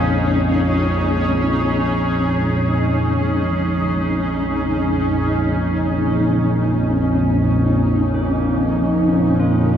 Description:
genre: ambient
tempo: free time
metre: none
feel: none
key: Bb minor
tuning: A4 = 441 Hz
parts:
  - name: granular cloud pad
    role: sustained chords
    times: 0.0-9.8 s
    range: Db4 to Db5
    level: -19 LUFS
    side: equal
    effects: built-in reverb
  - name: analog drone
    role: drone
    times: 0.0-9.8 s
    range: Bb1 to F2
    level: -18 LUFS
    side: equal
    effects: chorus
  - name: bronze singing bowl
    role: texture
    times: 0.0-5.0 s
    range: none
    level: barely audible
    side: none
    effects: none
  - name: tubular bells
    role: arpeggios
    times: 8.1-9.8 s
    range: Db4 to F4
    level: -33 LUFS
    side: right 4 dB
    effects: none
room: wet spring reverb, RT60 2.3 s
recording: echo-heavy mix, small room ambience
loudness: -16 LUFS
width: side -9 dB against mid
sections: 0.0-5.0 A section; 5.0-9.8 B section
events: none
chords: 0.0 Bbm; 5.0 Bbmadd9

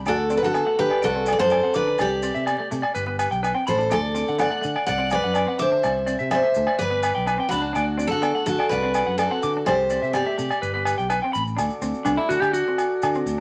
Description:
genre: highlife guitar band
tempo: 125 BPM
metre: 4/4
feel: straight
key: D mixolydian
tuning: A4 = 440 Hz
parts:
  - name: semi-hollow electric guitar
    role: accompaniment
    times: 0.0-13.3 s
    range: A3 to D4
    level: -37 LUFS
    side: equal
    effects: none
  - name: fingered electric bass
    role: bass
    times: 0.0-13.4 s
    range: G1 to D3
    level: -32 LUFS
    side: equal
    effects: none
  - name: picked steel-string acoustic guitar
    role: melody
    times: 0.1-11.1 s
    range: D4 to F#5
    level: -25 LUFS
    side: equal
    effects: none
  - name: electric guitar at the edge of break-up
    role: arpeggios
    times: 0.1-13.4 s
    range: D4 to D6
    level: -29 LUFS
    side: equal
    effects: none
  - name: agogo bells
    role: percussion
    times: 0.1-13.1 s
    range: none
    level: -30 LUFS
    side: equal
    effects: none
  - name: maracas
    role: percussion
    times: 0.1-13.4 s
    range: none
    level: -45 LUFS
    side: equal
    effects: none
  - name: tonewheel organ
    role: sustained chords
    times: 11.6-13.4 s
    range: F#4 to D5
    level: -36 LUFS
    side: equal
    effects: overdrive, stopped rotary speaker
room: moderate studio reverb, RT60 0.7 s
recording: vinyl crackle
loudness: -23 LUFS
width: mono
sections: 0.0-11.6 A section; 11.6-13.4 B section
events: clean electric guitar solo 11.6-13.4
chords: 0.1 D; 2.0 Csus2; 3.0 Gadd9; 3.9 D; 5.8 Cadd9; 6.8 G; 7.8 D; 9.7 Cadd9; 10.6 Gadd9; 11.6 D

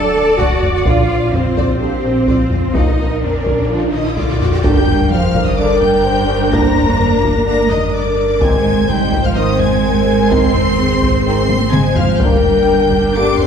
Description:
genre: cinematic, hybrid orchestral and electronic film score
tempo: 127 BPM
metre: 4/4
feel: straight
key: G phrygian from 4.6 s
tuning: A4 = 440 Hz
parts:
  - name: warm symphonic violin section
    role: second line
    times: 0.0-13.5 s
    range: C5 to D6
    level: -22 LUFS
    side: left 3 dB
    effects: none
  - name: warm symphonic viola section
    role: accompaniment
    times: 0.0-13.5 s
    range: C4 to D5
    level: -22 LUFS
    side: equal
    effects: none
  - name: warm French horn section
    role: sustained chords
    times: 0.0-13.5 s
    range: Bb3 to C5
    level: -18 LUFS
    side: left 3 dB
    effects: none
  - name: warm trombone section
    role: sustained chords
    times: 0.0-13.3 s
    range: D3 to D4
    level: -23 LUFS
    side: right 3 dB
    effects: none
  - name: pure sine sub bass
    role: bass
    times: 0.0-13.5 s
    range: D1 to Bb1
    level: -25 LUFS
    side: left 1 dB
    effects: none
  - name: rich symphonic cello section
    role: bass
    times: 0.0-13.5 s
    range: D3 to A4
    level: -19 LUFS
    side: right 3 dB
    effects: none
  - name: dark symphonic double bass section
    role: bass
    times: 0.1-13.5 s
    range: G1 to G2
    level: -21 LUFS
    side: right 4 dB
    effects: none
  - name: warm symphonic violin section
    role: melody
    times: 0.2-13.5 s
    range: F4 to D7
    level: -26 LUFS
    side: left 3 dB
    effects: none
  - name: taiko ensemble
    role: drums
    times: 0.4-13.5 s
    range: none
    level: -18 LUFS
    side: left 1 dB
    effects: none
  - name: riser and sub drop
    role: sound effects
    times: 2.5-6.5 s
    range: none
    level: -23 LUFS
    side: equal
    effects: none
room: wet scoring stage reverb, RT60 1.5 s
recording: heard from further back in the room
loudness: -12 LUFS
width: side -7 dB against mid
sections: 0.0-4.6 A section; 4.6-13.5 B section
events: riser 2.5-4.6; impact 4.6-6.5; drum fill 11.5-12.2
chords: 0.0 D; 0.9 Bbadd9; 4.6 Gm; 8.4 Ab; 12.2 Gm

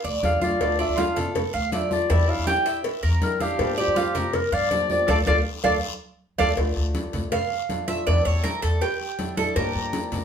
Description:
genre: latin, Cuban son and guajira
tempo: 161 BPM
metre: 4/4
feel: straight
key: D minor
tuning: A4 = 440 Hz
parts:
  - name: Cuban tres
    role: arpeggios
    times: 0.0-10.2 s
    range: E4 to F5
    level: -26 LUFS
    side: right 4 dB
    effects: none
  - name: upright bass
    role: bass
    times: 0.0-10.2 s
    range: D2 to G2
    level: -25 LUFS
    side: equal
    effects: none
  - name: congas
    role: percussion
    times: 0.0-10.2 s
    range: none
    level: -31 LUFS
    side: equal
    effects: none
  - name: warm clarinet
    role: melody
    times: 0.2-6.5 s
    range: G4 to G5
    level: -25 LUFS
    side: left 3 dB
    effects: none
  - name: fingerpicked swing-style acoustic guitar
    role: accompaniment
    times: 0.2-10.2 s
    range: D3 to G4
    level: -30 LUFS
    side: left 3 dB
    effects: none
  - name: cowbell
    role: percussion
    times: 0.2-10.2 s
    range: none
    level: -31 LUFS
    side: left 1 dB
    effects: none
  - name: guiro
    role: percussion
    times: 0.2-10.2 s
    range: none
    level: -39 LUFS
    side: left 6 dB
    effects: none
room: wet studio reverb, RT60 0.6 s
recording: band playing live in one room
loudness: -21 LUFS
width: side -7 dB against mid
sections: 0.0-6.6 A section; 6.6-10.2 B section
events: band accent 5.1-6.6; drum fill 5.5-6.6; Cuban tres solo 6.6-10.2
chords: 0.0 Dm; 2.1 Em7b5; 3.6 Gm7; 5.1 Dm; 8.1 Em7b5; 9.6 Gm7

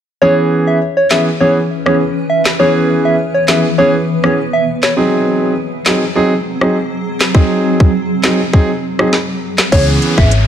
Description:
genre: dancehall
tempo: 101 BPM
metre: 4/4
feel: straight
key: C# minor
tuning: A4 = 440 Hz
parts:
  - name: soft struck synth lead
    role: melody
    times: 0.2-4.9, 9.7-10.3 s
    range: C#5 to E5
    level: -15 LUFS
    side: equal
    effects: chorus, ping-pong delay
  - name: warm concert grand piano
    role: accompaniment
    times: 0.2-10.3 s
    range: E3 to G#4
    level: -14 LUFS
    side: right 2 dB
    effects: none
  - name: granular cloud pad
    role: sustained chords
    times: 1.0-9.7 s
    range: E3 to B4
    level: -20 LUFS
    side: equal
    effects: built-in reverb
  - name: island pop drum kit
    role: drums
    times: 1.1-10.5 s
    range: crash cymbal, handclaps, hi-hat, kick drum, rim click, snare drum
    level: -15 LUFS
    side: equal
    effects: vintage 12-bit sampler grit
  - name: upright bass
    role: bass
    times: 9.7-10.5 s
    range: G#1 to C#2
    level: -12 LUFS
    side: equal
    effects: none
  - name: downlifter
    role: sound effects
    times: 9.7-10.5 s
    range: none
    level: -19 LUFS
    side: left 1 dB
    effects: none
room: light reverb, digital ambience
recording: none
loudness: -11 LUFS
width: side -9 dB against mid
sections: 0.2-9.7 A section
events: none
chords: 0.2 C#m7; 5.0 G#7; 9.7 C#m7

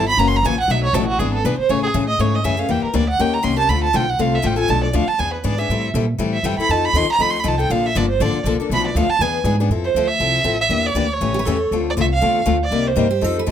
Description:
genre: acoustic string swing (jazz manouche)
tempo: 240 BPM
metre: 4/4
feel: swing 55% on 8ths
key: A minor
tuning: A4 = 440 Hz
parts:
  - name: warm violin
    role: melody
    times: 0.0-13.4 s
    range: F#4 to C6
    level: -20 LUFS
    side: right 4 dB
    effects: slapback echo, plate reverb
  - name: picked steel-string acoustic guitar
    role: accompaniment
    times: 0.0-13.5 s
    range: B2 to A#4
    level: -21 LUFS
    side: left 7 dB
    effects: none
  - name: upright bass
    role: bass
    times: 0.0-13.5 s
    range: F#1 to C3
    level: -22 LUFS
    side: right 1 dB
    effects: none
  - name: picked steel-string acoustic guitar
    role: second line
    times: 11.3-13.5 s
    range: G4 to B4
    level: -23 LUFS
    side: right 2 dB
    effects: none
room: light reverb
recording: none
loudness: -16 LUFS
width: side -9 dB against mid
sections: 0.0-1.7 A section; 1.7-9.7 A section; 9.7-13.5 B section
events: violin solo 0.0-9.7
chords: 0.2 F#7; 0.7 Bm7; 1.2 E7; 1.7 Amaj7; 2.7 Em7b5; 3.2 D#7; 3.7 Dm7; 4.7 Bm7b5; 5.2 E7; 5.7 Am7; 6.7 F7; 7.7 Bbmaj7; 8.7 Bm7b5; 9.2 E7; 9.7 Fmaj7; 10.7 Em7b5; 11.2 A7; 11.7 Dm7; 12.7 Cm7

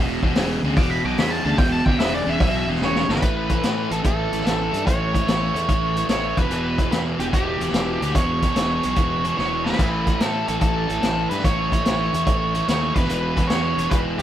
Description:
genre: blues rock power trio and southern rock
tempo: 146 BPM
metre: 4/4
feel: swing 67% on 8ths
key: E minor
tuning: A4 = 440 Hz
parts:
  - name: biting overdriven guitar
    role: riff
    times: 0.0-14.2 s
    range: E2 to A3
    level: -24 LUFS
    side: equal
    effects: none
  - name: fuzz fingered electric bass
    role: bass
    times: 0.0-14.2 s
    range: E1 to A2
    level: -26 LUFS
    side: equal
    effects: overdrive
  - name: vintage drum kit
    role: drums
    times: 0.2-14.2 s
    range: crash cymbal, hi-hat, kick drum, snare drum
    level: -23 LUFS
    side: equal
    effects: none
  - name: octave-fuzz lead guitar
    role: melody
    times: 0.8-14.2 s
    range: G4 to D6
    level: -25 LUFS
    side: right 1 dB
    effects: distortion
room: moderate studio reverb, RT60 0.6 s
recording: band playing live in one room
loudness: -18 LUFS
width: side -11 dB against mid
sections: 0.0-3.2 A section; 3.2-14.2 B section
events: lead electric guitar solo 0.0-3.2; drum fill 2.8-3.2, 9.4-9.8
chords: 0.0 E5; 3.2 A; 6.3 Em; 9.8 A; 12.9 E5

